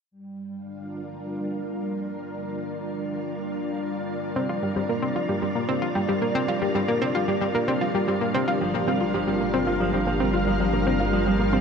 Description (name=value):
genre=ambient, sequencer-driven space music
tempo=113 BPM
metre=4/4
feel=straight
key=G minor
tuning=A4 = 443 Hz
part: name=string machine, full ensemble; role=sustained chords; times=0.1-11.6 s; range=G3 to F5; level=-27 LUFS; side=equal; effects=ensemble chorus
part: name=wind-like tuned noise texture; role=texture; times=1.8-11.6 s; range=D5 to G5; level=-35 LUFS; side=equal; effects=built-in reverb
part: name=analog pluck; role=riff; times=4.4-11.6 s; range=G3 to F4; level=-25 LUFS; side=equal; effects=chorus, ping-pong delay
part: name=Celtic harp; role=arpeggios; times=8.6-11.6 s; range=F3 to F4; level=-28 LUFS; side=right 1 dB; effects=auto-pan, low-pass filter, ping-pong delay
part: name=fat analog bass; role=bass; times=8.6-11.6 s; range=G1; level=-30 LUFS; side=equal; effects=none
room=wet huge ambient reverb, RT60 8.6 s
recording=cassette tape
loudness=-23 LUFS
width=side -6 dB against mid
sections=0.1-8.6 A section; 8.6-11.6 B section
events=fade-in on synth texture 0.1-8.6; filter sweep on synth arpeggio sound 8.6-11.6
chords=0.1 Gm7